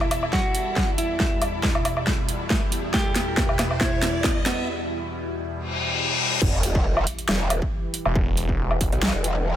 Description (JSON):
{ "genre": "heavy wobble dubstep", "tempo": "138 BPM", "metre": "4/4", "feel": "swing 54% on 16ths, half-time", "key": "E minor", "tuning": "A4 = 444 Hz", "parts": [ { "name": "clean electric guitar", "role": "melody", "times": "0.0-4.7 s", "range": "B3 to G4", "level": "-29 LUFS", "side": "equal", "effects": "spring reverb, digital delay" }, { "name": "evolving wavetable pad", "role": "sustained chords", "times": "0.0-9.6 s", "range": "E2 to B4", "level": "-31 LUFS", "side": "equal", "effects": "phaser, built-in reverb, sidechain pumping" }, { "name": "big-room dance drum kit", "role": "drums", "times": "0.0-9.3 s", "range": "crash cymbal, hi-hat, snare drum, woodblock", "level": "-25 LUFS", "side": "equal", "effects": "none" }, { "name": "riser, reverse cymbal and sub drop", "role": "sound effects", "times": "1.8-8.2 s", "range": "none", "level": "-29 LUFS", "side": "left 2 dB", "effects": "none" }, { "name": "clear symphonic string section", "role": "texture", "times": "0.0-4.7 s", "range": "E4 to E5", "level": "-37 LUFS", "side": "left 2 dB", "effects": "sidechain pumping" }, { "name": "electronic kick drum", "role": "drums", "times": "0.3-8.9 s", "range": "none", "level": "-25 LUFS", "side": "equal", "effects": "distortion" }, { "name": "growl bass", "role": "bass", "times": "6.4-9.6 s", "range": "E1 to B1", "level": "-24 LUFS", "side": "equal", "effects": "chorus, overdrive" }, { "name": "snarling distorted saw bass", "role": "bass", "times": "8.1-8.9 s", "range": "E1", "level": "-24 LUFS", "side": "equal", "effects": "distortion, overdrive" } ], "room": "light reverb", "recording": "none", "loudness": "-21 LUFS", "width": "side -11 dB against mid", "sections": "0.0-6.4 A section; 6.4-9.6 B section", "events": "build-up 0.0-6.4; drum fill 0.0-4.7; riser 1.8-4.7; break 4.7-6.4; reverse cymbal 5.7-6.4; drop 6.4-9.6; impact 6.4-8.2", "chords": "0.0 Em", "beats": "0.33 0.76 | 1.20 1.63 2.07 2.50 | 2.94 3.37 3.81 4.24 | 4.68 5.11 5.55 5.98 | 6.42 6.85 7.29 7.72 | 8.15 8.59 9.03 9.46" }